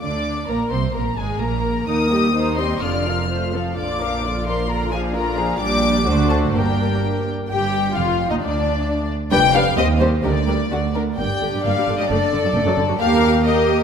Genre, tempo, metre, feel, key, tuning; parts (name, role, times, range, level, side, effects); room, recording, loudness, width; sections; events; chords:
quick classical-period movement for string orchestra; 130 BPM; 2/4; rubato; Bb major, G minor from 5.6 s; A4 = 440 Hz
warm symphonic violin section; melody; 0.0-13.8 s; C5 to F6; -23 LUFS; left 5 dB
warm symphonic violin section; second line; 0.0-13.8 s; D4 to F5; -24 LUFS; left 2 dB
dark symphonic viola section; accompaniment; 0.0-13.8 s; D3 to G4; -24 LUFS; equal
rich studio double bass section; bass; 0.0-13.8 s; F1 to Eb2; -24 LUFS; right 3 dB
warm symphonic cello section; bass; 0.0-13.8 s; D2 to D3; -24 LUFS; right 3 dB
wet scoring stage reverb, RT60 2.2 s; -17 LUFS; side -7 dB against mid
0.0-7.5 A section; 7.5-13.8 B section
0.0 Bb/D; 0.9 Absus2; 1.9 Eb; 2.3 Cm/Eb; 2.8 Bb/F; 3.3 F; 3.8 Bb; 5.6 Gm/Bb; 6.1 D7; 6.5 Gm; 7.5 Ebadd9; 8.4 N.C.; 9.3 G7/F; 9.8 Cm/Eb; 10.2 Gm/D; 10.7 D5; 11.2 G5; 12.1 D/F#; 13.0 Eb